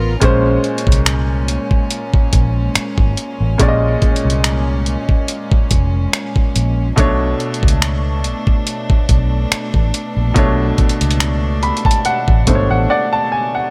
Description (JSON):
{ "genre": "contemporary R&B", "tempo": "71 BPM", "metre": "4/4", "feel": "swing 54% on 16ths", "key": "unclear", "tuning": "A4 = 441 Hz", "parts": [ { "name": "clear baby grand piano", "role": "accompaniment", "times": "0.0-13.7 s", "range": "Bb2 to B5", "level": "-22 LUFS", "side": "equal", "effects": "none" }, { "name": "rich chamber string section", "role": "sustained chords", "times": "0.0-13.7 s", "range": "Bb2 to Bb4", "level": "-27 LUFS", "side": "equal", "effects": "none" }, { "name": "vintage muted fingered electric bass", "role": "bass", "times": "0.0-12.9 s", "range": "F1 to C#2", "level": "-19 LUFS", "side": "equal", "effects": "none" }, { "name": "dusty soul sampler-style drum kit", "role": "drums", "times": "0.2-12.7 s", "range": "finger snaps, hi-hat, kick drum", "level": "-17 LUFS", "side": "equal", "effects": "none" } ], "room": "little or no reverb", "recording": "none", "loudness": "-16 LUFS", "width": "mono", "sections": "0.0-13.7 A section", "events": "grand piano fill 11.2-13.7; break 12.9-13.7", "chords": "0.2 Bbm9; 7.0 Bm9", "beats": "| 0.22 1.06 1.91 2.75 | 3.60 4.44 5.29 6.13 | 6.98 7.82 8.67 9.51 | 10.36 11.20 12.05 12.89" }